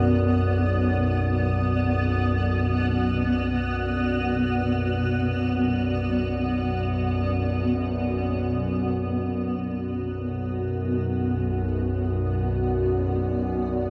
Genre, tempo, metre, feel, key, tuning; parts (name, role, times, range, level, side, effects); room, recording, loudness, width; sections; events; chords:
dark ambient drone; free time; B minor; A4 = 440 Hz
granular cloud pad; sustained chords; 0.0-13.9 s; B3 to F#5; -28 LUFS; equal; built-in reverb
bowed-like drone; drone; 0.0-13.9 s; B1 to F#2; -27 LUFS; equal; built-in reverb
wet huge ambient reverb, RT60 7.9 s; cassette tape; -25 LUFS; mono
0.0-8.5 A section; 8.5-13.9 B section
filter sweep on synth drone 0.0-8.5
0.0 Bm